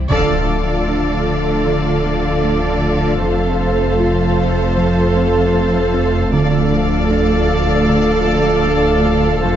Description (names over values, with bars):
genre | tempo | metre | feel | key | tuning
cinematic | 77 BPM | 4/4 | straight | D minor | A4 = 440 Hz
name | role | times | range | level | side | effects
warm analog pad | sustained chords | 0.0-9.6 s | A3 to A4 | -21 LUFS | left 1 dB | chorus
pure sine sub bass | bass | 0.0-9.6 s | D1 to F1 | -24 LUFS | left 1 dB | none
warm symphonic violin section | melody | 0.1-9.6 s | F5 | -27 LUFS | left 5 dB | none
rich studio violin section | second line | 0.1-9.6 s | C5 to D5 | -24 LUFS | left 4 dB | none
clear symphonic viola section | accompaniment | 0.1-9.6 s | A4 | -22 LUFS | right 1 dB | none
dark French horn section | sustained chords | 0.1-9.6 s | F3 to A4 | -21 LUFS | right 3 dB | none
thumb-piano-like synth pluck | arpeggios | 0.1-9.6 s | D3 to F4 | -24 LUFS | right 2 dB | chorus, tape echo
rich symphonic cello section | bass | 0.1-9.6 s | D2 to D3 | -21 LUFS | right 1 dB | none
warm symphonic double bass section | bass | 0.1-9.6 s | F1 to D2 | -22 LUFS | right 2 dB | none
impact and reverse cymbal | sound effects | 0.1-3.2, 9.5-9.6 s | none | -24 LUFS | equal | none
room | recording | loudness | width
light reverb | nothing above 7.7 kHz | -13 LUFS | side -10 dB against mid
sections
0.1-9.6 A section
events
band accent 0.1-0.9; impact 0.1-3.2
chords
0.1 Dm; 3.2 F; 6.3 Dm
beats
| 0.11 0.89 1.67 2.44 | 3.22 4.00 4.78 5.56 | 6.34 7.12 7.90 8.68 | 9.46